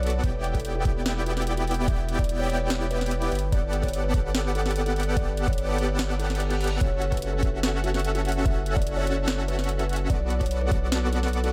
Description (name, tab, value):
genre	future bass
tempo	146 BPM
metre	4/4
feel	half-time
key	E dorian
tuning	A4 = 440 Hz
part	kalimba	melody	0.0-11.5 s	F#4 to E5	-35 LUFS	equal	sidechain pumping, dub echo
part	supersaw chords	riff	0.0-11.5 s	B3 to G5	-32 LUFS	equal	sidechain pumping
part	saturated sub bass	bass	0.0-11.5 s	E1 to B1	-30 LUFS	equal	sidechain pumping
part	trap drum kit	drums	0.0-11.5 s	hi-hat, snare drum	-34 LUFS	equal	small room ambience
part	electronic kick drum	drums	0.2-10.8 s	none	-28 LUFS	equal	small room ambience
part	reverse cymbal	sound effects	6.2-6.8 s	none	-43 LUFS	equal	none
room	digital ambience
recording	none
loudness	-26 LUFS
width	mono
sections	0.0-11.5 A section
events	reverse cymbal 6.2-6.8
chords	0.2 Em7; 3.3 Gmaj9; 6.8 F#m7; 10.1 Bm7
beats	| 0.24 0.65 1.06 1.47 | 1.88 2.29 2.70 3.11 | 3.52 3.94 4.35 4.76 | 5.17 5.58 5.99 6.40 | 6.81 7.22 7.63 8.04 | 8.46 8.87 9.28 9.69 | 10.10 10.51 10.92 11.33